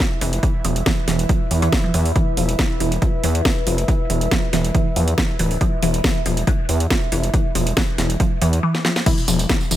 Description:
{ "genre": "driving peak-time techno", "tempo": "139 BPM", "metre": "4/4", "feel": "straight", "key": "unclear", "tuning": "A4 = 439 Hz", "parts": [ { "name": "resonant blip pluck", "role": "riff", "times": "0.0-9.8 s", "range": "E3 to F3", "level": "-24 LUFS", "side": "equal", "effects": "phaser, vintage 12-bit sampler grit, sidechain pumping, dub echo" }, { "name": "electronic kick drum", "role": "drums", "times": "0.0-9.6 s", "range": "none", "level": "-20 LUFS", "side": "equal", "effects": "studio reverb" }, { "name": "techno drum kit", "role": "drums", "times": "0.0-9.8 s", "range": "crash cymbal, hi-hat, snare drum, tambourine", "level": "-23 LUFS", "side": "equal", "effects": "studio reverb" }, { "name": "warbly tape-like pad", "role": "texture", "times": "0.0-8.6 s", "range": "E4 to E5", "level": "-29 LUFS", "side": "equal", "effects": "chorus, built-in reverb, phaser, sidechain pumping" }, { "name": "gritty driven synth bass", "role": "bass", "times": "0.2-9.8 s", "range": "D1 to E2", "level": "-20 LUFS", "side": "equal", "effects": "tube saturation, sidechain pumping" }, { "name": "filtered dub chord stab", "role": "stabs", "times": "9.1-9.2 s", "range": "B2 to E4", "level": "-28 LUFS", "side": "left 2 dB", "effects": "phaser, sidechain pumping, digital delay" } ], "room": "little or no reverb", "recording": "none", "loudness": "-16 LUFS", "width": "side -13 dB against mid", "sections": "0.0-9.1 A section", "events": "fade-in on ambient pad 0.0-9.1; drum fill 8.7-9.1", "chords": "0.0 E5" }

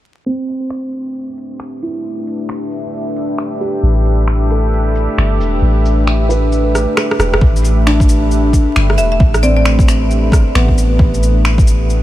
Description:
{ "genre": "future garage", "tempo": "134 BPM", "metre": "4/4", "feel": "swing 63% on 16ths", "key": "A minor", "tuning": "A4 = 440 Hz", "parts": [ { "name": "felt-muted upright piano", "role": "accompaniment", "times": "0.3-12.0 s", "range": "B3 to B4", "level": "-21 LUFS", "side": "right 1 dB", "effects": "sidechain pumping, low-pass filter, ping-pong delay" }, { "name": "deep dark ambient pad", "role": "sustained chords", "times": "1.0-12.0 s", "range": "A3 to E5", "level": "-20 LUFS", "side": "left 1 dB", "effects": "chorus, built-in reverb, sidechain pumping" }, { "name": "electronic shaker, finger snaps and rim click", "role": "drums", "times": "0.5-12.0 s", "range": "none", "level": "-21 LUFS", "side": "equal", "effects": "overdrive, small room ambience" }, { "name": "soft 808-style bass", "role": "bass", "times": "3.8-12.0 s", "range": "E1 to A1", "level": "-13 LUFS", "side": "equal", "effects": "tube saturation, sidechain pumping" }, { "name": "electronic kick drum", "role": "drums", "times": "7.4-11.7 s", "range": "none", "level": "-11 LUFS", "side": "equal", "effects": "overdrive, small room ambience" }, { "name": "marimba with hard mallets", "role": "melody", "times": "9.0-9.6 s", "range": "D5 to E5", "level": "-21 LUFS", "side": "left 1 dB", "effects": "ping-pong delay" } ], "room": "light reverb", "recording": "vinyl crackle, low-pass filter", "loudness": "-11 LUFS", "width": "side -14 dB against mid", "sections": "0.3-7.4 A section; 7.4-12.0 B section", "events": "filter sweep on felt piano 0.3-7.4; filter sweep 0.3-7.4; drum fill 6.7-7.4", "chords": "0.3 Amadd9" }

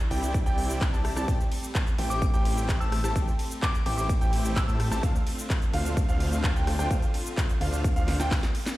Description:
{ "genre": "EDM, festival progressive house", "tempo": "128 BPM", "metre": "4/4", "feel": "straight", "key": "unclear", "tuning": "A4 = 440 Hz", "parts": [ { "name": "clear studio string section", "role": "sustained chords", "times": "0.0-8.7 s", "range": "C3 to F4", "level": "-39 LUFS", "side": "equal", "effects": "sidechain pumping" }, { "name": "house drum kit", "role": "drums", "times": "0.0-8.8 s", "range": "cabasa, handclaps, hi-hat, ride cymbal, rim click, snare drum", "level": "-34 LUFS", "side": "equal", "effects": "none" }, { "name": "warm grand piano", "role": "arpeggios", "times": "0.1-8.3 s", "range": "F5 to A5", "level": "-36 LUFS", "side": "right 1 dB", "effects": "sidechain pumping, tape echo" }, { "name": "dense compressed supersaw", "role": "riff", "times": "0.1-8.3 s", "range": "A3 to A5", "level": "-34 LUFS", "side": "equal", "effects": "sidechain pumping, tape echo" }, { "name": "detuned saw bass", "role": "bass", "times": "0.1-8.3 s", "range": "A1 to A2", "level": "-29 LUFS", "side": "equal", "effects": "sidechain pumping" }, { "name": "electronic kick drum", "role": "drums", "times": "0.3-8.4 s", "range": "none", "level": "-26 LUFS", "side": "equal", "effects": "none" }, { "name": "glassy synth bell", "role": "melody", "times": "2.1-4.8 s", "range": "D6 to E6", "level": "-36 LUFS", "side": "left 2 dB", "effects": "chorus, tremolo, tape echo" } ], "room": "light reverb, digital ambience", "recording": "played on a big sound system in a bare room, stone room reverb", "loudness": "-24 LUFS", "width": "side -17 dB against mid", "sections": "0.0-8.8 A section", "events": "drop 0.0-8.8; drum fill 8.1-8.8", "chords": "0.0 Cadd9; 1.3 Am7; 5.0 Dm7" }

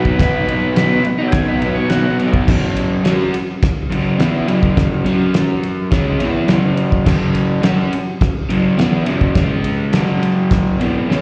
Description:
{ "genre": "garage rock duo or trio", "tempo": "105 BPM", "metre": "4/4", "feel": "straight", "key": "unclear", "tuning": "A4 = 441 Hz", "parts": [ { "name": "combo organ", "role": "melody", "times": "0.0-2.2 s", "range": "F#4 to C#5", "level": "-24 LUFS", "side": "equal", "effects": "spring reverb, plate reverb" }, { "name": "crunchy overdriven guitar", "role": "riff", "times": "0.0-11.2 s", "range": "E2 to F#4", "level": "-18 LUFS", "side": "equal", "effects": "slapback echo" }, { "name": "cloth-damped thuddy drum kit", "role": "drums", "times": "0.1-11.2 s", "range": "crash cymbal, kick drum, ride cymbal, snare drum", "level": "-21 LUFS", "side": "equal", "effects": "vintage 12-bit sampler grit" } ], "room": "moderate club reverb, RT60 0.8 s", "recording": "live gig heard through the venue's PA, cassette tape, recital hall reverb", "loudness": "-16 LUFS", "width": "mono", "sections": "0.0-2.5 A section; 2.5-11.2 B section", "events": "transistor combo organ solo 0.0-2.5", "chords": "0.0 B; 2.5 F#5; 9.4 C#5; 9.9 F#5" }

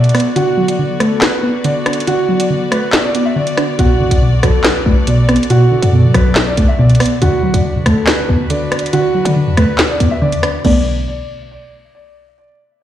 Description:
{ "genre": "hip hop, drill", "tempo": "140 BPM", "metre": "4/4", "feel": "half-time", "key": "B minor", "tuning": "A4 = 440 Hz", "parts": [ { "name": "dark concert grand piano", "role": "melody", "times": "0.0-10.8 s", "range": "F#4 to E5", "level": "-18 LUFS", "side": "right 2 dB", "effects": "low-pass filter, ping-pong delay" }, { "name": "warbly dusty pluck", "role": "accompaniment", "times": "0.0-10.8 s", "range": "B2 to D4", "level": "-15 LUFS", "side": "equal", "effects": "chorus, low-pass filter" }, { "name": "dark studio string section", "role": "sustained chords", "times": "0.0-10.8 s", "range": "B2 to D5", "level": "-23 LUFS", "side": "left 2 dB", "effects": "none" }, { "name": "drill drum kit", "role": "drums", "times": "0.0-10.7 s", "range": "crash cymbal, handclaps, hi-hat, rim click, snare drum", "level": "-17 LUFS", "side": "left 1 dB", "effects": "vintage 12-bit sampler grit" }, { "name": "short 808-style bass", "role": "bass", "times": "3.8-11.0 s", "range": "A1 to F#3", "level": "-15 LUFS", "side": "equal", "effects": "none" } ], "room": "light reverb, digital ambience", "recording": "played on a big sound system in a bare room, large studio reverb", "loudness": "-11 LUFS", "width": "side -11 dB against mid", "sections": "0.0-10.6 A section; 10.6-12.4 B section", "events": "break 0.0-3.8", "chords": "0.4 D6; 3.8 Bm7; 7.2 D6; 10.6 Bm7" }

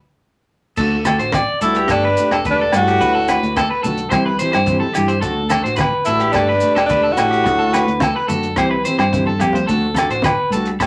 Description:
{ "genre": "highlife guitar band", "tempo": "108 BPM", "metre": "4/4", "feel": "straight", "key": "D mixolydian", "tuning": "A4 = 440 Hz", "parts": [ { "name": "mellow electric guitar", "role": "accompaniment", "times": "0.8-10.9 s", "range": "E3 to G4", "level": "-26 LUFS", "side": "equal", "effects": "none" }, { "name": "electric guitar at the edge of break-up", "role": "arpeggios", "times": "0.8-10.9 s", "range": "G4 to D5", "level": "-23 LUFS", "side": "equal", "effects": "none" }, { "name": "fingered electric bass", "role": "bass", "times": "0.8-10.9 s", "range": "E1 to G2", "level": "-26 LUFS", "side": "equal", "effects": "none" }, { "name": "compact cocktail drum kit", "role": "drums", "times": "0.8-10.9 s", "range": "crash cymbal, hi-hat, kick drum, rim click", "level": "-28 LUFS", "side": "equal", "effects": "none" }, { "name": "congas", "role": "percussion", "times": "0.8-10.9 s", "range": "none", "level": "-28 LUFS", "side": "equal", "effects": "none" }, { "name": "maracas", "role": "percussion", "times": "0.8-10.9 s", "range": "none", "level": "-38 LUFS", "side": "equal", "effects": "none" }, { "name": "agogo bells", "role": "percussion", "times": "1.1-10.9 s", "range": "none", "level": "-25 LUFS", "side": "equal", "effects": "none" }, { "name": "clear tenor saxophone", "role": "melody", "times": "1.6-8.0 s", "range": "D4 to F#4", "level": "-19 LUFS", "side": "equal", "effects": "none" }, { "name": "breathy trombone", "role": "second line", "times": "1.7-8.0 s", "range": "G2 to A2", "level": "-29 LUFS", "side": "equal", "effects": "none" } ], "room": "wet small room reverb, RT60 0.5 s", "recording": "none", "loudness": "-17 LUFS", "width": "mono", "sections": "0.8-10.9 A section", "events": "stop 0.0-0.8; drum fill 9.3-9.7", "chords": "0.0 N.C.; 0.8 D; 1.9 Gsus2; 3.0 D; 4.1 C; 5.2 D; 6.4 Gsus2; 7.5 D; 8.6 C; 9.7 D" }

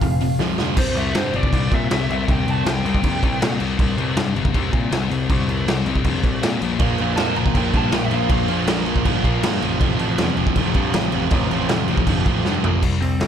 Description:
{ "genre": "punk rock", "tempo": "159 BPM", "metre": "4/4", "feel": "straight", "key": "unclear", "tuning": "A4 = 440 Hz", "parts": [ { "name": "lead guitar through a small cranked amp", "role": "melody", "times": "0.0-3.6, 7.2-8.5, 13.0-13.3 s", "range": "C4 to Bb5", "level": "-26 LUFS", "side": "right 2 dB", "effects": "overdrive" }, { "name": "biting overdriven guitar", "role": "riff", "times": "0.0-0.8, 6.8-12.8 s", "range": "F2 to Bb3", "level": "-24 LUFS", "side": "right 19 dB", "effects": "none" }, { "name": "sludgy distorted guitar", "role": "riff", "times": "0.0-13.3 s", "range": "F2 to C4", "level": "-23 LUFS", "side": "left 10 dB", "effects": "overdrive" }, { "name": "overdriven picked electric bass", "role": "bass", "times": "0.0-13.3 s", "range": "E1 to Bb2", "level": "-25 LUFS", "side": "right 1 dB", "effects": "none" }, { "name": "raw garage drum kit", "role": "drums", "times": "0.0-13.3 s", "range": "crash cymbal, hi-hat, kick drum, snare drum, toms", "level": "-21 LUFS", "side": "right 1 dB", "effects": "none" } ], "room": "little or no reverb", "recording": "none", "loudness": "-17 LUFS", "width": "side -8 dB against mid", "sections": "0.8-12.8 A section", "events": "drum fill 0.4-0.8, 12.5-12.8", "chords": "0.0 F5; 0.8 C5; 6.6 Bb5; 9.6 F" }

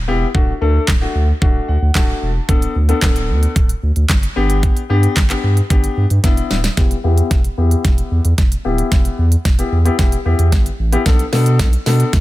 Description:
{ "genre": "dance-pop", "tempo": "112 BPM", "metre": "4/4", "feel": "straight", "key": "E minor", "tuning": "A4 = 445 Hz", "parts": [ { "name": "saturated sub bass", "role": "bass", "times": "0.0-12.2 s", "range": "D1 to B2", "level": "-16 LUFS", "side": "equal", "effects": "sidechain pumping" }, { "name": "warm baby grand piano", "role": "accompaniment", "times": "0.1-12.2 s", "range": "A3 to A5", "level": "-20 LUFS", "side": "left 4 dB", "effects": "sidechain pumping, low-pass filter" }, { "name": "pop drum kit", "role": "drums", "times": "0.3-12.2 s", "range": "handclaps, hi-hat, kick drum, snare drum", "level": "-16 LUFS", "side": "equal", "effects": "none" } ], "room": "little or no reverb", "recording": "none", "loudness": "-13 LUFS", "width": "side -17 dB against mid", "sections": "0.0-6.8 A section; 6.8-12.2 B section", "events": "grand piano fill 1.4-2.5; drum fill 6.2-6.8, 6.8-12.2; build-up 6.8-12.2; filter sweep on grand piano 6.8-12.2", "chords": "0.3 D; 2.5 Bm7/D; 4.4 G; 6.8 Em" }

